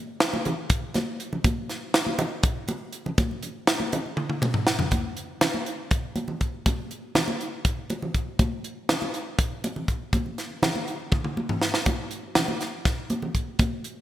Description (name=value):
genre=jazz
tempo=242 BPM (eighths)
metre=7/8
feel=straight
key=none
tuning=none
part: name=crisp fusion drum kit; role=drums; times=0.2-14.0 s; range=hi-hat, kick drum, snare drum, toms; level=-24 LUFS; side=equal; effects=gated reverb
part: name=congas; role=percussion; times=0.2-13.7 s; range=none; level=-31 LUFS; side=right 1 dB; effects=none
room=moderate lush hall reverb, RT60 2.1 s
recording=bright 1980s-style digital production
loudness=-24 LUFS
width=side -13 dB against mid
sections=0.0-4.9 A section; 4.9-14.0 B section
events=drum fill 4.2-4.9, 11.1-11.9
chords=none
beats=0.21 0.46 0.70 0.95 1.20 | 1.45 1.70 1.94 2.19 2.44 2.69 2.94 | 3.18 3.43 3.68 3.93 4.17 4.42 4.67 | 4.92 5.17 5.42 5.66 5.91 6.16 6.41 | 6.66 6.91 7.15 7.40 7.65 7.90 8.15 | 8.39 8.64 8.89 9.14 9.39 9.63 9.88 | 10.13 10.38 10.63 10.87 11.12 11.37 11.62 | 11.87 12.11 12.36 12.61 12.86 13.10 13.35 | 13.60 13.84